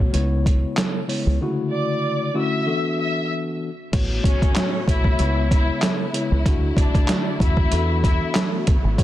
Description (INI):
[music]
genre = hip hop, boom-bap hip-hop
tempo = 95 BPM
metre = 4/4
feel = swing 55% on 16ths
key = A major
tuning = A4 = 438 Hz
[part]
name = mellow tine electric piano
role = accompaniment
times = 0.0-9.0 s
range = A2 to C#5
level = -25 LUFS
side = left 3 dB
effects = medium stereo tremolo, cassette tape, high-pass filter, low-pass filter
[part]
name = deep dub fingered electric bass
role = bass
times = 0.0-9.0 s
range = G#1 to E2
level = -22 LUFS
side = equal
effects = none
[part]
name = trip hop sampler-style drum kit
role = drums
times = 0.1-9.0 s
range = crash cymbal, handclaps, hi-hat, kick drum, snare drum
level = -20 LUFS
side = equal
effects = overdrive, vintage 12-bit sampler grit
[part]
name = rich studio violin section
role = melody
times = 1.7-8.3 s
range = C#4 to E6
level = -27 LUFS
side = left 2 dB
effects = high-pass filter, low-pass filter, ping-pong delay
[part]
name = warm studio string section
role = sustained chords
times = 3.9-9.0 s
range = C#3 to E4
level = -32 LUFS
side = equal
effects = high-pass filter, low-pass filter
[sound]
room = little or no reverb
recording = dense, heavily limited modern master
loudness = -18 LUFS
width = side -14 dB against mid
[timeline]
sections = 0.0-3.9 A section; 3.9-9.0 B section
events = break 0.0-1.4, 1.4-3.9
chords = 0.1 C#m7; 1.4 Dmaj9; 2.7 E9sus4; 3.9 A6; 5.2 C#m7; 6.5 Dmaj9; 7.7 E9sus4